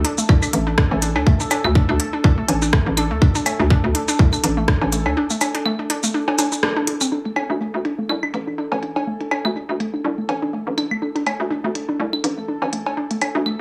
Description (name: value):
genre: minimal techno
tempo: 123 BPM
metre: 4/4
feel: swing 56% on 16ths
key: unclear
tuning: A4 = 441 Hz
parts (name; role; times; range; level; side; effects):
- hollow square pluck; riff; 0.0-13.5 s; A3 to D4; -26 LUFS; equal; chorus, sidechain pumping, dub echo
- hollow knocking FM bass; bass; 0.0-13.6 s; A1 to D2; -25 LUFS; equal; sidechain pumping, high-pass filter
- garage drum kit; drums; 0.0-13.3 s; hi-hat, rim click, shaker; -26 LUFS; equal; low-pass filter on hats, low-pass filter on perc, low-pass filter on snare, low-pass filter on room
- bubbling stepped-filter texture; texture; 0.0-13.6 s; A4; -34 LUFS; equal; chorus, built-in reverb, sidechain pumping
- electronic kick drum; drums; 0.3-4.8 s; none; -18 LUFS; equal; none
- claves and cowbell; percussion; 0.3-13.6 s; none; -28 LUFS; equal; tape echo
room: moderate small room reverb, RT60 0.5 s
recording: studio reverb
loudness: -20 LUFS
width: mono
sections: 0.0-7.1 A section; 7.1-13.6 B section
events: break 5.2-7.1; band accent 6.6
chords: 0.0 D5